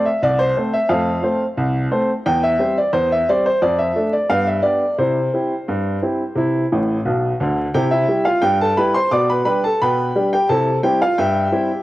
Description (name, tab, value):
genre	ragtime piano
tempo	88 BPM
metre	2/4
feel	straight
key	C major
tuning	A4 = 440 Hz
part	clear upright piano	solo	0.0-11.8 s	A1 to D6	-16 LUFS	equal	none
room	light reverb, studio reverb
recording	home recording on cassette, vinyl crackle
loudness	-16 LUFS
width	side -16 dB against mid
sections	0.0-7.7 A section; 7.7-11.8 B section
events	upright piano fill 6.7-7.7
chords	0.0 F; 2.3 C/E; 3.6 Dm/F; 4.3 G; 5.0 C; 9.1 G/B; 10.5 C